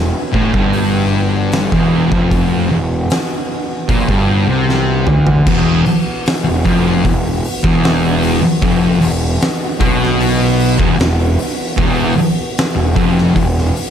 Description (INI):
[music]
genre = stoner and doom metal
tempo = 76 BPM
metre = 4/4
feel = straight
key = E minor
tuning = A4 = 440 Hz
[part]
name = mellow tonewheel organ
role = sustained chords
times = 0.0-13.9 s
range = E3 to F#4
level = -25 LUFS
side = right 2 dB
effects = slow rotary speaker, overdrive, chorus vibrato
[part]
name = thick fuzz guitar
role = riff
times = 0.0-13.7 s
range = E2 to D3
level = -16 LUFS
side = left 7 dB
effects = distortion
[part]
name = thick fuzz guitar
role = riff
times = 0.0-13.7 s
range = E2 to D3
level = -18 LUFS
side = right 9 dB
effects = distortion
[part]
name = fuzz picked electric bass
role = bass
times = 0.0-13.7 s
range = E1 to D2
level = -20 LUFS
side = equal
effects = overdrive
[part]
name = oversized low-tuned drum kit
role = drums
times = 0.3-13.9 s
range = crash cymbal, hi-hat, kick drum, snare drum, toms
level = -18 LUFS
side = equal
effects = none
[sound]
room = little or no reverb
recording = dark, warm production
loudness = -12 LUFS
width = side -9 dB against mid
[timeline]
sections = 0.0-5.5 A section; 5.5-13.9 B section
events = drum fill 4.7-5.5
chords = 0.0 Em; 5.5 E5